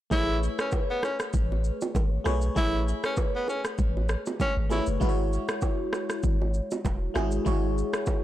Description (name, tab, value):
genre	afrobeats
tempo	98 BPM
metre	4/4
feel	swing 55% on 16ths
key	unclear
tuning	A4 = 441 Hz
part	bright tenor saxophone	melody	0.1-4.9 s	B3 to E4	-31 LUFS	equal	digital delay
part	FM electric piano	accompaniment	0.1-8.2 s	G#3 to C#5	-31 LUFS	left 1 dB	chorus, phaser
part	punchy sub bass	bass	0.1-7.8 s	E1 to B1	-28 LUFS	equal	none
part	afro-pop drum kit	drums	0.1-8.2 s	kick drum, rim click, shaker	-30 LUFS	equal	overdrive
part	congas and bongos	percussion	0.1-8.2 s	none	-34 LUFS	right 5 dB	none
room	little or no reverb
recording	blown-out, overdriven recording, overdrive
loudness	-25 LUFS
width	side -13 dB against mid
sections	0.1-8.2 A section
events	none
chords	0.1 Amaj9; 5.0 E6